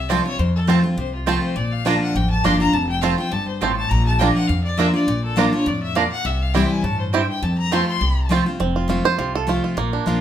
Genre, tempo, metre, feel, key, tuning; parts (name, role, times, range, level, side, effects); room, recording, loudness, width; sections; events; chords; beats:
bluegrass; 205 BPM; 4/4; swing 54% on 8ths; F major; A4 = 439 Hz
clear fiddle; second line; 0.0-8.3 s; F4 to C6; -26 LUFS; left 4 dB
picked steel-string acoustic guitar; accompaniment; 0.0-10.2 s; F2 to F4; -21 LUFS; left 1 dB
upright bass; bass; 0.0-10.2 s; F1 to G2; -23 LUFS; equal
bluegrass banjo; melody; 0.1-10.2 s; Bb3 to C5; -22 LUFS; right 6 dB
mandolin; stabs; 0.1-8.4 s; Bb3 to Bb5; -25 LUFS; right 7 dB
moderate large studio reverb, RT60 0.9 s; minimal, uncompressed stereo recording; -17 LUFS; side -10 dB against mid
0.0-8.6 A section; 8.6-10.2 A section
fiddle solo 0.0-8.6; five-string banjo solo 8.6-10.2
0.0 F; 1.6 Bb; 2.7 F; 3.9 Bb; 6.3 C; 7.4 F
0.09 | 0.39 0.68 0.97 1.27 | 1.56 1.85 2.15 2.44 | 2.73 3.03 3.32 3.61 | 3.91 4.20 4.49 4.79 | 5.08 5.37 5.67 5.96 | 6.25 6.54 6.84 7.13 | 7.42 7.72 8.01 8.30 | 8.60 8.89 9.19 9.48 | 9.77 10.06